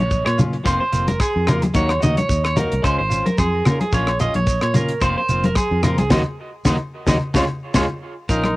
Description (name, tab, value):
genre	highlife guitar band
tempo	110 BPM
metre	4/4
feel	swing 54% on 16ths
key	unclear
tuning	A4 = 442 Hz
part	electric guitar at the edge of break-up	arpeggios	0.0-8.6 s	F4 to Eb5	-22 LUFS	right 2 dB	cassette tape, tape echo
part	fingered electric bass	bass	0.0-8.5 s	F1 to Db3	-22 LUFS	equal	none
part	shekere	percussion	0.0-8.4 s	none	-26 LUFS	right 2 dB	none
part	tight funk drum kit	drums	0.1-8.6 s	hi-hat, kick drum, rim click, snare drum	-23 LUFS	equal	none
part	agogo bells	percussion	0.3-8.6 s	none	-29 LUFS	left 4 dB	none
part	electric guitar at the edge of break-up	accompaniment	0.4-8.5 s	Eb3 to Gb4	-26 LUFS	left 3 dB	cassette tape
part	congas	percussion	0.4-8.6 s	none	-21 LUFS	left 1 dB	none
part	warm trumpet	melody	8.3-8.6 s	Eb4	-22 LUFS	equal	cassette tape
room	little or no reverb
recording	home recording on cassette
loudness	-16 LUFS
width	side -19 dB against mid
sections	0.0-8.3 A section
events	band accent 6.1-8.3; drum fill 7.6-8.3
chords	0.0 Bbm; 0.7 Fsus4; 1.7 Ebm; 2.8 Db; 3.9 Bbm; 5.0 Fsus4; 6.1 Ebm; 7.2 Db